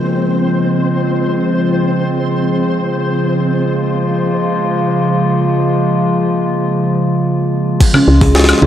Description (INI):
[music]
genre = IDM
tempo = free time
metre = none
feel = none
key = Db major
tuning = A4 = 440 Hz
[part]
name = warbly tape-like pad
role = sustained chords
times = 0.0-8.7 s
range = Db3 to F4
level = -14 LUFS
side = equal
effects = chorus, built-in reverb
[part]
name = flickering grainy texture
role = texture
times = 0.0-5.6 s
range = C4 to C5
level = -24 LUFS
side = left 1 dB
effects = built-in reverb, sidechain pumping
[part]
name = electronic kick drum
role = drums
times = 7.8-8.3 s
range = none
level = -11 LUFS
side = equal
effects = studio reverb
[part]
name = jungle sampler-style drum kit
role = drums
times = 7.8-8.7 s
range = crash cymbal, hi-hat, snare drum, toms, woodblock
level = -12 LUFS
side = equal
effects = low-pass filter on hats, studio reverb, low-pass filter on toms, low-pass filter on perc, low-pass filter on snare, low-pass filter on cymbals
[part]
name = buzzing kalimba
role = arpeggios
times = 7.9-8.7 s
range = Ab3 to Db5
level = -19 LUFS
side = right 1 dB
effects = none
[part]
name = woody FM bass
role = bass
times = 8.1-8.7 s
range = Db2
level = -10 LUFS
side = equal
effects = none
[sound]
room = moderate echo chamber reverb, RT60 1.4 s, digital ambience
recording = dry, gritty hardware recording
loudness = -12 LUFS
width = side -10 dB against mid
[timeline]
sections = 0.0-7.8 A section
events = none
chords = 0.0 Dbmaj7; 3.4 Bbm7; 7.8 Db